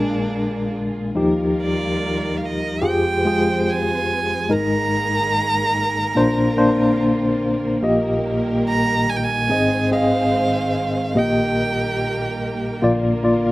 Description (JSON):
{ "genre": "acoustic folk-pop ballad", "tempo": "72 BPM", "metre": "4/4", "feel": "straight", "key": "Eb major", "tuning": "A4 = 440 Hz", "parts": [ { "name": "clear violin", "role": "melody", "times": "0.0-12.8 s", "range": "D4 to Bb5", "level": "-23 LUFS", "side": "right 2 dB", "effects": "none" }, { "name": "mellow tine electric piano", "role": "accompaniment", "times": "0.0-13.5 s", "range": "F1 to Eb5", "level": "-19 LUFS", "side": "left 1 dB", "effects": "medium tremolo" }, { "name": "warm studio string section", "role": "sustained chords", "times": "0.0-13.5 s", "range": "Bb2 to C5", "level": "-27 LUFS", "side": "right 2 dB", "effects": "none" } ], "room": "light reverb", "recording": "recorded outdoors, with no room sound", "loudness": "-17 LUFS", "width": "side -18 dB against mid", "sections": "0.0-1.2 A section; 1.2-13.5 B section", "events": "none", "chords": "0.0 Bb7; 1.2 Ebadd9; 2.8 Fmadd9; 4.5 Absus2; 6.2 Bbadd9; 7.8 Eb/Bb; 9.5 Ab; 11.2 Eb/Bb; 12.8 Bb", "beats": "0.32 | 1.17 2.00 2.84 3.68 | 4.51 5.34 6.17 7.00 | 7.83 8.67 9.50 10.33 | 11.16 12.00 12.84" }